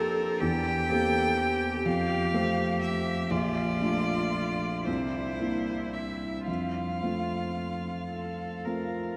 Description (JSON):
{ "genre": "classical, slow romantic movement for piano trio", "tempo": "36-42 BPM (dotted quarters)", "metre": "6/8", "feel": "rubato", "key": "F major", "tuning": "A4 = 440 Hz", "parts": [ { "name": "rich violin", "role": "melody", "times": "0.0-9.2 s", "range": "Bb4 to G5", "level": "-35 LUFS", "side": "equal", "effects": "none" }, { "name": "rich cello", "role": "second line", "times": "0.0-9.2 s", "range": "E4 to Bb4", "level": "-36 LUFS", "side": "equal", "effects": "none" }, { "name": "dark baby grand piano", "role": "accompaniment", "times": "0.0-9.2 s", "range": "Bb1 to A4", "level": "-32 LUFS", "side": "equal", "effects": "none" } ], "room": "wet cathedral reverb, RT60 6.3 s", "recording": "in a vast, echoing space", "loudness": "-29 LUFS", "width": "mono", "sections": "0.0-9.2 A section", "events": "none", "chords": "0.4 C7/E; 1.9 F; 3.3 Bbmaj7; 4.9 C9; 6.5 F", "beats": "| 0.42 1.86 | 3.31 4.87 | 6.48 8.11" }